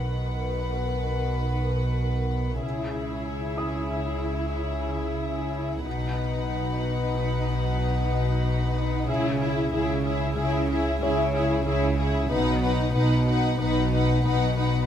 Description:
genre	cinematic, suspense film score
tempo	93 BPM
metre	5/4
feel	straight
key	unclear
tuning	A4 = 441 Hz
part	warm symphonic violin section	melody	0.0-14.9 s	E5 to F#5	-33 LUFS	left 5 dB	none
part	warm symphonic violin section	second line	0.0-14.9 s	G#4 to B4	-32 LUFS	left 3 dB	none
part	dark symphonic viola section	accompaniment	0.0-14.9 s	D#3 to E4	-31 LUFS	equal	none
part	rich symphonic cello section	bass	0.0-14.8 s	B2 to C#3	-31 LUFS	right 3 dB	none
part	warm symphonic double bass section	bass	0.0-14.8 s	B1 to C#2	-32 LUFS	right 4 dB	none
part	pure sine sub bass	drone	0.0-14.9 s	B1 to C#2	-33 LUFS	equal	none
part	felt-muted upright piano	texture	0.0-5.9, 11.0-14.9 s	C#5 to D#6	-39 LUFS	left 1 dB	none
part	marimba with medium mallets	riff	0.1-14.8 s	B2 to C#3	-30 LUFS	left 4 dB	none
room	moderate recital hall reverb, RT60 1.4 s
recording	none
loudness	-23 LUFS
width	side -9 dB against mid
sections	0.0-14.9 A section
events	none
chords	0.0 B; 2.6 C#m; 5.9 B; 9.1 C#m; 12.3 B

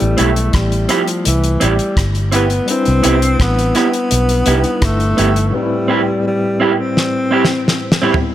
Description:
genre	lovers rock reggae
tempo	84 BPM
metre	4/4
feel	straight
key	unclear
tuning	A4 = 441 Hz
part	breathy alto saxophone	melody	0.0-8.0 s	E3 to C4	-18 LUFS	left 1 dB	tape echo
part	overdriven tine electric piano	accompaniment	0.0-8.3 s	A2 to B4	-22 LUFS	left 3 dB	fast tremolo
part	vintage muted fingered electric bass	bass	0.0-5.5 s	G1 to C2	-16 LUFS	equal	none
part	damped 70s drum kit	drums	0.0-8.3 s	hi-hat, kick drum, rim click, snare drum, toms	-18 LUFS	left 1 dB	none
part	electric guitar through a small old amp	stabs	0.2-8.1 s	B3 to G4	-19 LUFS	right 5 dB	none
room	light reverb, studio reverb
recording	none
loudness	-12 LUFS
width	side -12 dB against mid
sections	0.0-8.3 A section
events	drum fill 7.0-8.3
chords	0.0 Am7; 2.7 Cmaj7; 5.5 Am7

